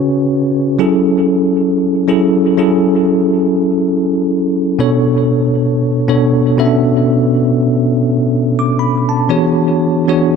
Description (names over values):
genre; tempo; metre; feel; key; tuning
R&B; 60 BPM; 4/4; swing 58% on 16ths; F# minor; A4 = 441 Hz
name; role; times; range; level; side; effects
bell-like tine electric piano; solo; 0.0-10.4 s; B2 to D6; -11 LUFS; equal; fast stereo tremolo, analog delay
room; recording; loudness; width
moderate plate reverb, RT60 2.8 s; echo-heavy mix; -11 LUFS; side -6 dB against mid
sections
0.0-10.4 A section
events
none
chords
0.0 C#7sus4; 0.8 F#m7; 4.8 Bm9; 9.3 E13